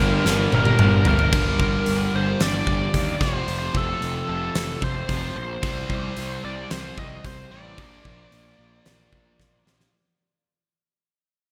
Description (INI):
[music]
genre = hard rock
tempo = 112 BPM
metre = 4/4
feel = straight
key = G minor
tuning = A4 = 440 Hz
[part]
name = biting lead guitar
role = melody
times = 0.0-9.6 s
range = A4 to Eb5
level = -30 LUFS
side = equal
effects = overdrive, digital delay
[part]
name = crunchy overdriven guitar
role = riff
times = 0.0-9.9 s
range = F2 to C4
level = -32 LUFS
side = equal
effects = subtle chorus
[part]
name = overdriven electric guitar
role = riff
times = 0.0-9.9 s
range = F2 to C4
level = -35 LUFS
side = equal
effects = none
[part]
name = tight distorted guitar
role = riff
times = 0.0-1.3 s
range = G2 to G3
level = -31 LUFS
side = equal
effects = distortion
[part]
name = fuzz picked electric bass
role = bass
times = 0.0-9.9 s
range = F1 to Eb2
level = -30 LUFS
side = equal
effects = overdrive
[part]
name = huge arena drum kit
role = drums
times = 0.3-9.9 s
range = crash cymbal, hi-hat, kick drum, snare drum, toms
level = -26 LUFS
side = equal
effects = none
[sound]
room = moderate lush hall reverb, RT60 2.4 s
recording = bright 1980s-style digital production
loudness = -23 LUFS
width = mono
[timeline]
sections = 0.0-1.3 A section; 1.3-9.9 B section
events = drum fill 0.3-1.3, 9.4-9.9; fade-out 1.3-9.9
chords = 0.0 Gm; 3.2 F; 5.6 C5; 7.8 Bb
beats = 0.25 0.79 | 1.33 1.86 2.40 2.94 | 3.47 4.01 4.55 5.09 | 5.63 6.16 6.70 7.24 | 7.78 8.32 8.86 9.40